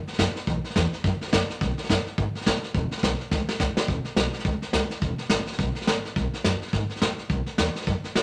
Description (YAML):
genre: rockabilly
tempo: 211 BPM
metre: 4/4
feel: swing 59% on 8ths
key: E major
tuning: A4 = 441 Hz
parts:
  - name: upright bass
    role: bass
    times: 0.1-8.2 s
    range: E1 to A2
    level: -31 LUFS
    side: equal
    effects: none
  - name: vintage brush drum kit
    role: drums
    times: 0.1-8.2 s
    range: hi-hat, kick drum, snare drum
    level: -27 LUFS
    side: equal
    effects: none
room: moderate studio reverb, RT60 0.8 s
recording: none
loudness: -26 LUFS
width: mono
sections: 0.0-3.9 A section; 3.9-8.2 B section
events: drum fill 3.3-3.9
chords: none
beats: 0.19 | 0.47 0.76 1.04 1.32 | 1.61 1.89 2.18 2.46 | 2.75 3.03 3.31 3.60 | 3.88 4.17 4.45 4.74 | 5.02 5.30 5.59 5.87 | 6.16 6.44 6.73 7.01 | 7.30 7.58 7.87 8.15